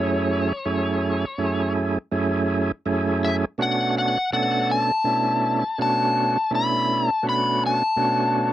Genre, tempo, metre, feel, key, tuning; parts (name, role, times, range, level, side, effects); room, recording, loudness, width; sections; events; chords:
blues; 82 BPM; 4/4; swing 54% on 16ths; A4 = 439 Hz
overdriven slide guitar; melody; 0.0-8.5 s; C#5 to B5; -22 LUFS; left 3 dB
overdriven tonewheel organ; accompaniment; 0.0-8.5 s; F#2 to A4; -22 LUFS; right 3 dB; slow rotary speaker
light reverb; dry, close 1970s-style studio recording; -20 LUFS; side -13 dB against mid
0.0-8.5 A section
0.0 F#m7; 3.6 Bm7